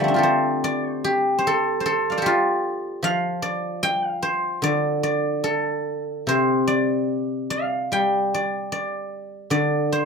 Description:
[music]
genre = chinese traditional, Chinese solo plucked strings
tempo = 74 BPM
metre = 2/4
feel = rubato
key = D yu mode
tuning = A4 = 444 Hz
[part]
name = guzheng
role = solo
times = 0.0-10.1 s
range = C3 to G5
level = -20 LUFS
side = equal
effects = none
[sound]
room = wet small room reverb, RT60 0.5 s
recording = minimal, uncompressed stereo recording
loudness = -20 LUFS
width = side -5 dB against mid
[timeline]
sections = 0.0-10.1 A section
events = none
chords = none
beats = 0.64 | 1.45 2.25 | 3.04 3.83 | 4.63 5.46 | 6.29 7.10 | 7.93 8.73 | 9.52

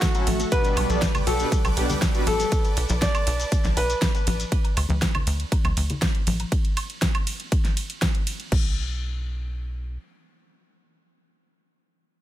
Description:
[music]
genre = progressive house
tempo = 120 BPM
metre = 4/4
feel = straight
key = unclear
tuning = A4 = 436 Hz
[part]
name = bright grand piano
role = melody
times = 0.0-4.4 s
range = F#4 to D5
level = -29 LUFS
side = equal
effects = sidechain pumping, ping-pong delay
[part]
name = soft synth bell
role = second line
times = 0.0-2.9 s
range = F#4 to B4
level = -34 LUFS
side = left 3 dB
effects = none
[part]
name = supersaw pad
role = sustained chords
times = 0.0-4.5 s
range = A4 to D6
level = -35 LUFS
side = right 2 dB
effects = sidechain pumping
[part]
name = soft round pluck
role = arpeggios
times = 0.0-2.5 s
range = G3 to A4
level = -32 LUFS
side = right 2 dB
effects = ensemble chorus, sidechain pumping, ping-pong delay
[part]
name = electronic kick drum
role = drums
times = 0.0-8.6 s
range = none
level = -23 LUFS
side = equal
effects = overdrive
[part]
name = pop drum kit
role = drums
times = 0.0-8.6 s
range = crash cymbal, hi-hat, ride cymbal, snare drum, woodblock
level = -29 LUFS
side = right 1 dB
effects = none
[part]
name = shekere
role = percussion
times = 0.0-4.5 s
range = none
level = -36 LUFS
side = left 4 dB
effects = none
[part]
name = soft supersaw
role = stabs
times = 0.1-2.2 s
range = A2 to D5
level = -31 LUFS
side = left 1 dB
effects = phaser, sidechain pumping, ping-pong delay
[part]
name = woodblock and congas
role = percussion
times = 0.1-6.5 s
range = none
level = -33 LUFS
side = left 3 dB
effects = sidechain pumping on perc
[part]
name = tight sequencer bass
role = bass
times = 0.3-10.0 s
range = A1 to D2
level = -26 LUFS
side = equal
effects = sidechain pumping
[sound]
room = digital ambience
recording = none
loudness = -21 LUFS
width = side -13 dB against mid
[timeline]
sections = 0.0-8.5 A section; 8.5-12.2 B section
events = drop 0.0-8.5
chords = 0.0 A6; 0.5 G; 4.5 D5; 8.5 N.C.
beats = 0.02 | 0.52 1.02 1.52 2.02 | 2.52 3.02 3.52 4.02 | 4.52 5.02 5.52 6.02 | 6.52 7.02 7.52 8.02 | 8.52 9.02 9.52

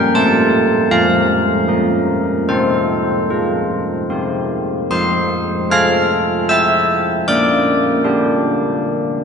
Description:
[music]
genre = classical, tune for church bells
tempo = 76 BPM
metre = 3/4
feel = uneven beats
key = F major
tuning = A4 = 439 Hz
[part]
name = carillon bells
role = solo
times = 0.0-9.2 s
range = F3 to F6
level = -13 LUFS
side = equal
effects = none
[sound]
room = wet church reverb, RT60 3.2 s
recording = nothing above 10.3 kHz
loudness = -13 LUFS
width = side -6 dB against mid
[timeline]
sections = 0.0-4.9 A section; 4.9-9.2 B section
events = none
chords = 0.1 F/A; 1.7 N.C.; 2.5 F/C; 4.1 C5; 4.9 F; 7.3 Gm/Bb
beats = | 0.14 0.91 1.69 | 2.49 3.30 4.10 | 4.91 5.72 6.51 | 7.28 8.04 8.80

